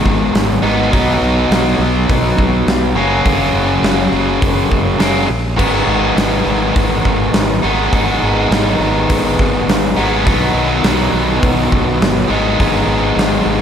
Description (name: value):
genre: classic rock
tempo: 103 BPM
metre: 4/4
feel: straight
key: G# minor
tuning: A4 = 440 Hz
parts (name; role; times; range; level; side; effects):
- biting overdriven guitar; riff; 0.0-13.6 s; F#2 to D#4; -14 LUFS; equal; slapback echo
- fuzz fingered electric bass; bass; 0.0-13.6 s; F#1 to B1; -20 LUFS; equal; overdrive
- big rock drum kit; drums; 0.1-13.3 s; crash cymbal, hi-hat, kick drum, snare drum; -17 LUFS; equal; none
room: moderate lush hall reverb, RT60 1.9 s, studio ambience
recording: big arena sound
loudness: -12 LUFS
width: side -8 dB against mid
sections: 0.0-13.6 A section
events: none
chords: 0.0 G#m; 0.9 B; 3.0 F#; 5.6 G#m; 10.3 B; 12.3 G#m